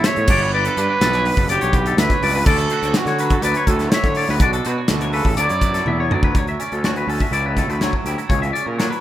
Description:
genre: math rock and midwest emo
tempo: 124 BPM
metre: 4/4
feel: straight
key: D major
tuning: A4 = 440 Hz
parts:
  - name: warm trumpet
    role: melody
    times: 0.0-6.1 s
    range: F#4 to D5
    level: -22 LUFS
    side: right 2 dB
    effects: slapback echo
  - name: twangy electric guitar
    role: accompaniment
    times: 0.0-9.0 s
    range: D2 to G4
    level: -28 LUFS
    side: right 9 dB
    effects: none
  - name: twangy electric guitar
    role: arpeggios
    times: 0.0-9.0 s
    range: G4 to E5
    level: -23 LUFS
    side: left 6 dB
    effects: none
  - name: modern studio drum kit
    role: drums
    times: 0.0-9.0 s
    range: crash cymbal, hi-hat, kick drum, snare drum, toms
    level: -20 LUFS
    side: equal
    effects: none
  - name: fuzz picked electric bass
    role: bass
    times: 0.2-8.9 s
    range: F#1 to D3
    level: -22 LUFS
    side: equal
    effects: overdrive
room: light reverb, studio ambience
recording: rough home demo mix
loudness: -16 LUFS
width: side -13 dB against mid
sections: 0.0-6.4 A section; 6.4-9.0 B section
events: drum fill 5.9-6.4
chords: 0.3 Gadd9; 2.5 Dmaj7; 4.4 Bm7; 5.4 D69; 6.4 Dmaj9; 8.3 F#7/C#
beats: 0.04 | 0.52 1.01 1.49 1.98 | 2.46 2.95 3.44 3.92 | 4.41 4.89 5.38 5.86 | 6.35 6.84 7.32 7.81 | 8.30 8.79

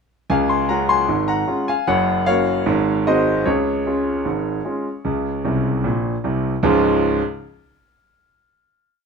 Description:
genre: ragtime piano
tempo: 76 BPM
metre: 2/4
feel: straight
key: Db major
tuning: A4 = 440 Hz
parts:
  - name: clear concert grand piano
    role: solo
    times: 0.3-7.2 s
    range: Gb1 to C6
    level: -17 LUFS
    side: equal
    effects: none
room: moderate studio reverb, RT60 0.7 s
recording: minimal, uncompressed stereo recording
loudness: -17 LUFS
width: side -5 dB against mid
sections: 0.3-6.6 A section; 6.6-8.2 final chord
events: grand piano fill 5.4-6.6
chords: 0.3 Db; 1.9 Gb; 2.7 Ab7; 3.5 Db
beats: | 0.30 1.09 | 1.88 2.67 | 3.46 4.25 | 5.05 5.84 | 6.64

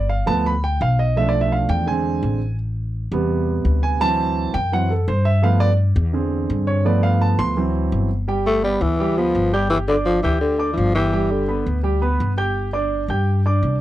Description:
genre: Afro-Cuban jazz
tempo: 168 BPM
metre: 4/4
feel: straight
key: G mixolydian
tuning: A4 = 440 Hz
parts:
  - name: warm grand piano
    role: accompaniment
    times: 0.0-13.8 s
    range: C3 to G6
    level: -21 LUFS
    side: right 3 dB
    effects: none
  - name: upright bass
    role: bass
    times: 0.0-13.8 s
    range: G1 to G2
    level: -20 LUFS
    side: left 1 dB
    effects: none
  - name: growling tenor saxophone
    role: melody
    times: 8.5-11.7 s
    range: D3 to A3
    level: -19 LUFS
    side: left 2 dB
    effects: none
room: light reverb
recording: dry, close 1970s-style studio recording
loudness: -17 LUFS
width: side -14 dB against mid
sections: 0.0-8.3 A section; 8.3-13.8 B section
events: grand piano solo 0.0-8.3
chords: 0.0 G7; 1.2 Bm7b5; 1.9 Eaug7; 2.6 Am7; 4.0 D7; 5.4 G7; 6.1 E7alt; 6.9 G7; 7.6 D7; 8.3 G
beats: 0.09 0.45 0.80 | 1.16 1.51 1.87 2.23 | 2.58 2.94 3.29 3.65 | 4.01 4.36 4.72 5.08 | 5.43 5.79 6.14 6.50 | 6.86 7.21 7.57 7.92 | 8.28 8.63 8.99 9.35 | 9.71 10.06 10.42 10.78 | 11.13 11.49 11.85 12.20 | 12.56 12.92 13.28 13.63

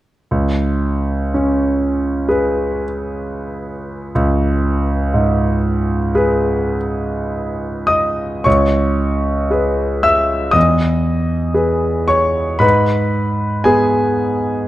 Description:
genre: classical, impressionist solo piano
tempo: 46-66 BPM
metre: 4/4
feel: rubato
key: C# minor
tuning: A4 = 440 Hz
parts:
  - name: clear concert grand piano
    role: solo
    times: 0.3-14.7 s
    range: C#2 to E6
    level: -14 LUFS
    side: equal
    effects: none
room: light reverb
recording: close, detailed microphones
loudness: -14 LUFS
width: side -15 dB against mid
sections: 0.3-8.5 A section; 8.5-14.7 B section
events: none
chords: 0.3 C#5; 8.5 C#m7; 10.6 Emaj7; 12.6 G#m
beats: | 0.29 1.34 2.29 3.21 | 4.16 5.16 6.15 7.25 | 8.46 9.53 10.56 11.58 | 12.63 13.69

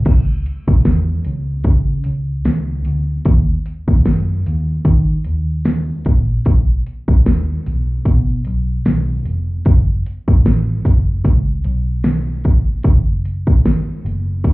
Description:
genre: indie pop, bedroom pop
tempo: 75 BPM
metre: 4/4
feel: swing 55% on 16ths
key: unclear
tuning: A4 = 438 Hz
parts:
  - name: vintage muted picked electric bass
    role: bass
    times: 0.1-14.5 s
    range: E#1 to D#3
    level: -18 LUFS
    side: equal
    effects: none
  - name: pop drum kit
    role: drums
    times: 0.1-14.5 s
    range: crash cymbal, hi-hat, kick drum, snare drum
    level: -14 LUFS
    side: equal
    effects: none
room: light reverb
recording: heard muffled through a wall, club reverb, EQ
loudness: -14 LUFS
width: side -20 dB against mid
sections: 0.0-12.9 A section; 12.9-14.5 B section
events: none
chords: none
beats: | 0.07 0.87 1.67 2.47 | 3.27 4.06 4.86 5.66 | 6.46 7.26 8.06 8.86 | 9.66 10.46 11.26 12.05 | 12.85 13.65 14.45

